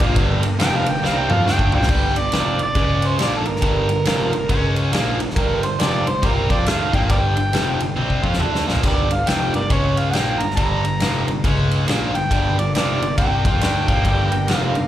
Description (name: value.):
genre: blues rock power trio and southern rock.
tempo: 138 BPM.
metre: 4/4.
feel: swing 62% on 8ths.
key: G minor.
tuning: A4 = 440 Hz.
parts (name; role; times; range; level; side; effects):
overdriven harmonica; melody; 0.0-14.9 s; F4 to Bb5; -23 LUFS; right 2 dB; slapback echo.
overdriven tonewheel organ; sustained chords; 0.0-1.9, 12.3-14.9 s; Bb3 to B4; -33 LUFS; right 3 dB; none.
distorted electric guitar; riff; 0.0-14.9 s; F2 to F4; -23 LUFS; equal; overdrive.
dark grand piano; bass; 0.0-14.9 s; F1 to F2; -24 LUFS; left 1 dB; none.
huge arena drum kit; drums; 0.0-14.8 s; crash cymbal, kick drum, ride cymbal, snare drum, splash cymbal, toms; -20 LUFS; equal; none.
room: small room ambience.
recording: live gig heard through the venue's PA, club ambience.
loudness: -16 LUFS.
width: side -12 dB against mid.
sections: 0.0-1.9 A section; 1.9-14.9 B section.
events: harmonica solo 0.0-1.9; drum fill 1.0-1.9, 8.0-8.8.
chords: 0.0 Gm; 1.9 G5; 2.8 C#5; 3.2 Gm; 4.5 C#5; 4.9 Gm; 9.7 C#5; 10.1 Gm; 11.4 C#5; 11.9 Gm.